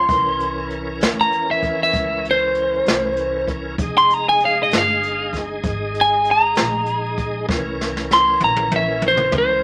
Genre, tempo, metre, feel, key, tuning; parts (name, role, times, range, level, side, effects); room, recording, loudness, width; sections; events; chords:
slow blues; 65 BPM (dotted quarters); 12/8; straight; F minor; A4 = 437 Hz
lightly driven lead guitar; melody; 0.0-9.6 s; C5 to C6; -19 LUFS; equal
bright tonewheel organ; sustained chords; 0.0-9.6 s; E3 to Bb4; -29 LUFS; equal; chorus vibrato, slow rotary speaker
upright bass; bass; 0.0-9.6 s; F1 to E2; -33 LUFS; equal
jazz brush drum kit; drums; 0.1-9.5 s; hi-hat, kick drum, snare drum, toms; -25 LUFS; equal
moderate small room reverb, RT60 0.6 s; vinyl crackle; -19 LUFS; mono
0.0-9.6 A section
lead electric guitar solo 0.0-9.6; drum fill 7.5-9.6
0.1 C7b9; 3.8 Fm9; 7.5 C7b9